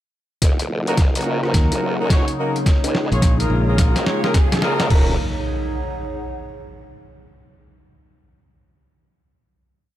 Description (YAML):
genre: glitch hop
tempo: 107 BPM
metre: 4/4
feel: swing 63% on 16ths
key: Eb minor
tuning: A4 = 439 Hz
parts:
  - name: warm analog pad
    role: sustained chords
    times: 0.4-5.2 s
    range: Db3 to F4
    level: -28 LUFS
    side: left 2 dB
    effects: chorus, sidechain pumping
  - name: formant-sweep wobble bass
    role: bass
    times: 0.4-5.2 s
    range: Eb1 to Db2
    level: -24 LUFS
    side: equal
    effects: chorus, overdrive, high-pass filter
  - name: boom bap sampler-style drum kit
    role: drums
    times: 0.4-5.0 s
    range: crash cymbal, hi-hat, rim click, snare drum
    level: -24 LUFS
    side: equal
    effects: small room ambience
  - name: electronic kick drum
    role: drums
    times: 0.4-5.0 s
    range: none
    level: -16 LUFS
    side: equal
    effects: small room ambience
  - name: riser and impact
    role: sound effects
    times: 2.6-7.1 s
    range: none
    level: -29 LUFS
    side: equal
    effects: none
  - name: warbly tape-like pad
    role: texture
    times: 1.8-7.1 s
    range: Eb4 to Gb5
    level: -28 LUFS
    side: right 1 dB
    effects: chorus, built-in reverb, phaser, sidechain pumping
  - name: mellow horn section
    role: stabs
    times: 0.9-5.1 s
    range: Bb3 to Db5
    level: -25 LUFS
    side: equal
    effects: sidechain pumping, tape echo
  - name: modern bright fingered electric bass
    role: bass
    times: 1.5-3.9 s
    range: Bb1 to Eb2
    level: -19 LUFS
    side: equal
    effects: none
room: digital ambience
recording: none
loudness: -16 LUFS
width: side -13 dB against mid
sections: 0.4-4.9 build; 4.9-7.1 final chord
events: build-up 0.4-4.9; drum fill 0.4-4.9; riser 2.6-4.9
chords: 0.4 Ebm7; 2.7 Bbm7; 4.9 Ebm7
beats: | 0.42 0.98 1.54 2.10 | 2.66 3.22 3.78 4.34 | 4.90 5.46 6.03 6.59